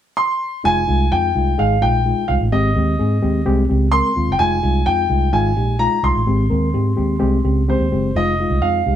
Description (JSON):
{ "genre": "uptempo 1960s-style soul", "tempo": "128 BPM", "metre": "4/4", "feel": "straight", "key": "F minor", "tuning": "A4 = 440 Hz", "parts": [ { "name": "clear concert grand piano", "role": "melody", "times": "0.2-9.0 s", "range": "C5 to C6", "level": "-20 LUFS", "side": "equal", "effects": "none" }, { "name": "mellow reed electric piano", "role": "accompaniment", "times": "0.6-9.0 s", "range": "Ab3 to Bb4", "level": "-20 LUFS", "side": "left 3 dB", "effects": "none" }, { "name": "vintage muted fingered electric bass", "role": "bass", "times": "0.7-9.0 s", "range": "F1 to Ab2", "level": "-18 LUFS", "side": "right 1 dB", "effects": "none" } ], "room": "moderate studio reverb, RT60 0.8 s", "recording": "band playing live in one room", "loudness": "-15 LUFS", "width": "side -10 dB against mid", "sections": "0.6-8.1 A section", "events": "none", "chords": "0.0 N.C.; 0.6 Fm7; 2.5 Abmaj7; 4.4 Fm7; 6.3 Abmaj7; 8.1 Fm7" }